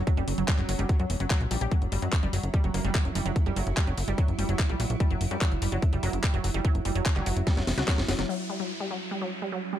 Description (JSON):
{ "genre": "psychedelic trance", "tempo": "146 BPM", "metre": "4/4", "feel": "straight", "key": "unclear", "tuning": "A4 = 442 Hz", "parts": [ { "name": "metallic wobble bass", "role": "second line", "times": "0.0-3.0, 6.0-7.6 s", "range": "F#3 to A#3", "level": "-43 LUFS", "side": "left 2 dB", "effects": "none" }, { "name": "evolving wavetable pad", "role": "sustained chords", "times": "0.0-9.8 s", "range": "F#3 to E4", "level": "-35 LUFS", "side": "right 5 dB", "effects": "chorus, built-in reverb, sidechain pumping" }, { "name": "plucky analog bass", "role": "bass", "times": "0.0-8.2 s", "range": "E1 to F#2", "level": "-29 LUFS", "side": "equal", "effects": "none" }, { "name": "wide unison pluck", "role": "riff", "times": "0.1-9.8 s", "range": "F#3 to G4", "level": "-34 LUFS", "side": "moving between left 8 dB and right 10 dB", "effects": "auto-pan, sidechain pumping, dub echo" }, { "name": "electronic kick drum", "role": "drums", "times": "0.1-8.0 s", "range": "none", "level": "-25 LUFS", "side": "equal", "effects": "none" }, { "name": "garage drum kit", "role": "drums", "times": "0.1-8.3 s", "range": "handclaps, hi-hat, snare drum", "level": "-33 LUFS", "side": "left 1 dB", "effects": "none" }, { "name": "downlifter", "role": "sound effects", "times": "8.3-9.8 s", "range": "none", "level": "-37 LUFS", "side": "equal", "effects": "none" } ], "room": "digital ambience", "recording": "dark, warm production", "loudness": "-25 LUFS", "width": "side -11 dB against mid", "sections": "0.0-8.3 A section; 8.3-9.8 B section", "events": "drum fill 7.5-8.3", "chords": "0.0 F#5", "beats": "| 0.07 0.48 0.89 1.30 | 1.72 2.13 2.54 2.95 | 3.36 3.77 4.18 4.59 | 5.00 5.41 5.82 6.24 | 6.65 7.06 7.47 7.88 | 8.29 8.70 9.11 9.52" }